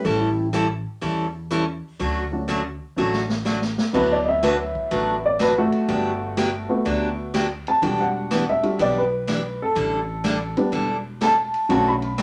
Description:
country, western swing; 124 BPM; 4/4; swing 67% on 8ths; D major; A4 = 439 Hz
clean lap steel guitar; second line; 0.0-0.5 s; E4 to A4; -27 LUFS; equal
picked steel-string acoustic guitar; accompaniment; 0.0-12.2 s; B2 to B4; -26 LUFS; equal
warm upright piano; accompaniment; 0.0-12.2 s; D3 to B5; -24 LUFS; equal
upright bass; bass; 0.0-12.2 s; E1 to E2; -33 LUFS; equal
vintage drum kit; drums; 0.1-12.2 s; crash cymbal, hi-hat, kick drum, ride cymbal, snare drum; -31 LUFS; equal
wet studio reverb, RT60 0.5 s; -22 LUFS; mono
0.0-3.9 A section; 3.9-12.2 B section
drum fill 3.0-3.9; upright piano solo 3.9-12.2
0.1 A7; 2.0 Dmaj7; 3.9 D6; 5.9 Gmaj7; 7.8 Em7; 9.8 A7sus4; 11.7 Bm7

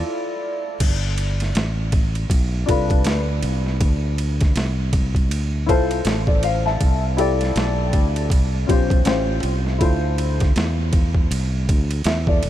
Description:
hip hop, jazz-hop; 80 BPM; 4/4; swing 59% on 16ths; D dorian; A4 = 436 Hz
dark upright piano; accompaniment; 0.0-12.5 s; C#4 to A5; -24 LUFS; left 3 dB; analog chorus
fingered electric bass; bass; 0.8-12.5 s; F1 to E2; -22 LUFS; equal
boom bap sampler-style drum kit; drums; 0.8-12.5 s; crash cymbal, hi-hat, kick drum, ride cymbal, snare drum; -21 LUFS; equal; overdrive
light reverb; -18 LUFS; side -12 dB against mid
0.8-12.5 A section
break 0.1-0.8
0.0 Dmadd9; 0.8 G9; 3.8 Dm9; 6.8 C69; 9.1 A7alt; 9.8 Dm9

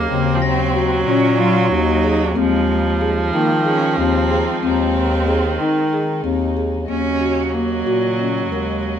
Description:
contemporary instrumental, chamber music in an uneven meter; 185 BPM (eighths); 7/8; straight; Eb dorian; A4 = 440 Hz
warm cello; melody; 0.0-9.0 s; Ab3 to F4; -23 LUFS; right 4 dB
clear viola; second line; 0.0-9.0 s; Eb3 to Bb3; -22 LUFS; right 4 dB
dark studio string section; sustained chords; 0.0-9.0 s; Db3 to Eb5; -28 LUFS; left 1 dB
marimba with soft mallets; arpeggios; 0.0-9.0 s; Db3 to Bb4; -20 LUFS; left 5 dB
clear bass clarinet; bass; 0.0-9.0 s; Eb2 to Eb3; -21 LUFS; left 1 dB
glockenspiel with soft plastic mallets; texture; 0.0-2.4 s; Gb6 to Bb6; -32 LUFS; left 5 dB
light reverb; -15 LUFS; side -8 dB against mid
0.0-6.9 A section; 6.9-9.0 B section
0.0 Ebm7; 2.4 Ab/Eb; 6.9 Ebm7

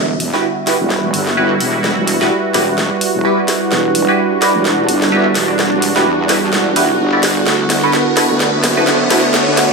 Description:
bass house; 128 BPM; 4/4; swing 58% on 16ths; E minor; A4 = 440 Hz
sweeping resonant pad; sustained chords; 0.0-9.7 s; D3 to F#4; -17 LUFS; right 2 dB; chorus
wobble bass; bass; 0.0-9.7 s; E1 to E2; -20 LUFS; equal; chorus, high-pass filter
riser; sound effects; 0.0-9.7 s; -24 LUFS; equal
warbly tape-like pad; texture; 1.8-9.7 s; D4 to F#5; -22 LUFS; right 1 dB; chorus, built-in reverb
house drum kit; drums; 0.2-9.7 s; hi-hat, snare drum; -18 LUFS; equal; high-pass filter on hats, high-pass filter on snare, high-pass filter on room
band-passed chord stab; stabs; 0.3-9.7 s; E4 to D5; -18 LUFS; equal; phaser, analog chorus, tape echo
wet plate reverb, RT60 1.3 s; dreamy mix soaked in reverb, high-pass filter; -12 LUFS; side -3 dB against mid
0.0-9.7 A section
build-up 0.0-9.7; drum fill 0.0-9.7; riser 0.0-9.7
0.0 Emadd9; 7.5 D6

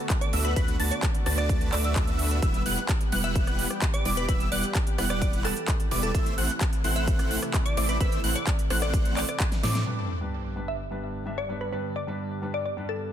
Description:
EDM, festival progressive house; 129 BPM; 4/4; straight; A4 = 441 Hz
lush unison pad; sustained chords; 0.0-13.1 s; C3 to G4; -38 LUFS; right 1 dB; chorus, sidechain pumping
big-room dance drum kit; drums; 0.1-9.8 s; handclaps, hi-hat, rim click, snare drum; -32 LUFS; right 1 dB; low-pass filter on hats, small room ambience, low-pass filter on snare
electronic kick drum; drums; 0.1-9.5 s; -26 LUFS; equal; small room ambience
glassy wavetable pluck; melody; 0.2-13.1 s; A4 to E5; -34 LUFS; equal; chorus, ping-pong delay
wide unison lead; arpeggios; 0.3-9.8 s; D6 to A6; -34 LUFS; equal; ensemble chorus, sidechain pumping, ping-pong delay
dense compressed supersaw; riff; 0.3-9.8 s; G3 to A5; -33 LUFS; right 1 dB; sidechain pumping, ping-pong delay
saturated sub bass; bass; 0.3-9.8 s; E1 to A2; -29 LUFS; equal; sidechain pumping
warm grand piano; accompaniment; 9.9-13.1 s; G2 to E5; -33 LUFS; equal; sidechain pumping
sub drop; sound effects; 9.9-11.7 s; -35 LUFS; equal
light reverb; dense, heavily limited modern master; -24 LUFS; side -10 dB against mid
0.0-9.9 A section; 9.9-13.1 B section
drop 0.0-9.9; drum fill 9.5-9.9; impact 9.9-11.7; filter sweep on analog synth pad 9.9-13.1
0.0 D6; 2.4 Em; 6.1 Am; 9.9 G

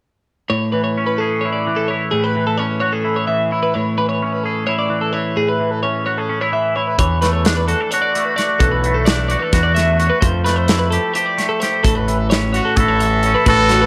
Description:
math rock and midwest emo; 259 BPM (eighths); 7/8; straight; A major; A4 = 440 Hz
twangy electric guitar; accompaniment; 0.5-13.9 s; A2 to A4; -21 LUFS; equal; lush chorus
twelve-string electric guitar; arpeggios; 0.5-13.9 s; F#4 to E5; -23 LUFS; equal; spring reverb
growling fingered electric bass; bass; 7.0-13.9 s; A1 to F2; -21 LUFS; equal; overdrive
modern studio drum kit; drums; 7.0-13.8 s; crash cymbal, hi-hat, kick drum, snare drum; -21 LUFS; equal
bright trumpet; melody; 12.5-13.9 s; F#4 to A4; -18 LUFS; equal; slapback echo
light reverb; -17 LUFS; mono
0.5-13.5 A section
0.5 Amaj7; 7.0 E9sus4; 10.2 Fmaj9; 11.8 A69

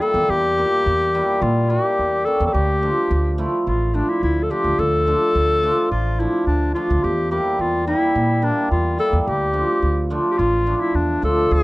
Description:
klezmer; 107 BPM; 4/4; straight; D minor; A4 = 439 Hz
breathy clarinet; melody; 0.0-11.6 s; D4 to A4; -20 LUFS; left 2 dB
cimbalom; accompaniment; 0.0-11.6 s; F3 to G4; -22 LUFS; right 1 dB
upright bass; bass; 0.1-11.6 s; A1 to Bb2; -22 LUFS; equal
light reverb; dry, close 1970s-style studio recording; -17 LUFS; side -20 dB against mid
0.0-11.5 A section
0.0 Edim; 2.5 Dm; 7.0 Edim; 9.3 Dm

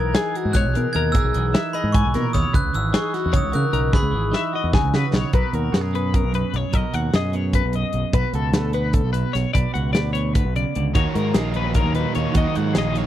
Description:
math rock and midwest emo; 300 BPM (eighths); 7/8; straight; B major; A4 = 443 Hz
glockenspiel with brass mallets; melody; 0.0-4.9 s; B5 to G#6; -28 LUFS; right 1 dB
clean electric guitar; accompaniment; 0.0-13.1 s; F#2 to B4; -27 LUFS; right 8 dB
twelve-string electric guitar; arpeggios; 0.0-13.1 s; F#4 to G#5; -26 LUFS; left 10 dB; harmonic tremolo
growling fingered electric bass; bass; 0.0-13.1 s; G#1 to C#3; -23 LUFS; equal; overdrive
modern studio drum kit; drums; 0.1-13.1 s; hi-hat, kick drum, snare drum; -21 LUFS; equal
overdriven semi-hollow guitar; riff; 10.9-13.1 s; D#3 to D#4; -27 LUFS; right 1 dB
studio reverb; dry, close 1970s-style studio recording; -18 LUFS; side -12 dB against mid
0.0-5.3 A section; 5.3-13.1 B section
drum fill 3.9-5.3
0.0 Emaj9#11/B; 2.5 C#m11; 5.3 Bmaj7; 8.1 Bm9; 10.9 D#m7

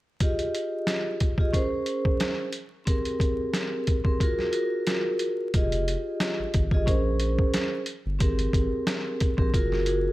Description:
hip hop, boom-bap hip-hop; 90 BPM; 4/4; swing 55% on 16ths; F minor; A4 = 439 Hz
vibraphone with soft mallets; accompaniment; 0.2-10.1 s; C4 to Eb5; -27 LUFS; equal; cassette tape, high-pass filter, low-pass filter
trip hop sampler-style drum kit; drums; 0.2-10.0 s; hi-hat, kick drum, snare drum; -26 LUFS; equal
saturated sub bass; bass; 5.5-10.1 s; F1 to Bb1; -28 LUFS; equal
little or no reverb; vinyl crackle; -24 LUFS; side -17 dB against mid
0.2-5.5 A section; 5.5-10.1 B section
0.2 Fm9; 1.5 Bbm9; 2.9 Abmaj9; 4.2 Gbmaj9; 5.5 Fm9; 6.9 Bbm9; 8.2 Abmaj9; 9.5 Gbmaj9

